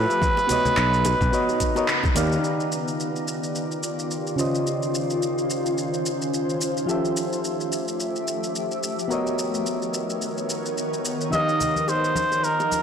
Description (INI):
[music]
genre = sunset chillout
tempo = 108 BPM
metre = 4/4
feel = swing 57% on 16ths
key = unclear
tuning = A4 = 440 Hz
[part]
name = trumpet with cup mute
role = melody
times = 0.0-2.2, 11.3-12.8 s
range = Bb4 to Eb5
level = -23 LUFS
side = right 1 dB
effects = tape echo
[part]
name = soft electric-piano-like synth keys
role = accompaniment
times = 0.0-12.8 s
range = Db3 to F5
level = -27 LUFS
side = equal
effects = chorus, auto-pan, low-pass filter, ping-pong delay
[part]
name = shimmering ambient pad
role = sustained chords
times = 0.0-12.8 s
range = C#3 to A#5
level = -28 LUFS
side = equal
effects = chorus, built-in reverb
[part]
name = sustaining fretless electric bass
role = bass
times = 0.0-2.4 s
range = B1 to D#2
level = -23 LUFS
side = equal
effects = tube saturation
[part]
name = deep house drum kit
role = drums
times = 0.1-12.8 s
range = handclaps, hi-hat, shaker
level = -30 LUFS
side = equal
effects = studio reverb
[part]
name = bongos and congas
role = percussion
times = 0.1-2.3, 11.3-12.8 s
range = none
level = -32 LUFS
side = left 3 dB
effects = none
[part]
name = electronic kick drum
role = drums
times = 0.2-2.1 s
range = none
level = -25 LUFS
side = equal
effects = studio reverb
[sound]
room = moderate plate reverb, RT60 1.8 s, digital ambience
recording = blown-out, overdriven recording, overdrive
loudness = -22 LUFS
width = side -7 dB against mid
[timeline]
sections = 0.0-2.4 A section; 2.4-12.8 B section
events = band accent 1.9; filter sweep on synth keys 2.4-12.8; filter sweep on ambient pad 2.4-12.8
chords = 0.2 Bmaj9; 2.4 Ebmaj9; 4.4 Dbmaj9; 6.9 Fmaj9; 9.1 Bmaj9; 11.3 Ebadd9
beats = | 0.22 0.77 1.33 1.88 | 2.44 3.00 3.55 4.11 | 4.66 5.22 5.77 6.33 | 6.88 7.44 8.00 8.55 | 9.11 9.66 10.22 10.77 | 11.33 11.88 12.44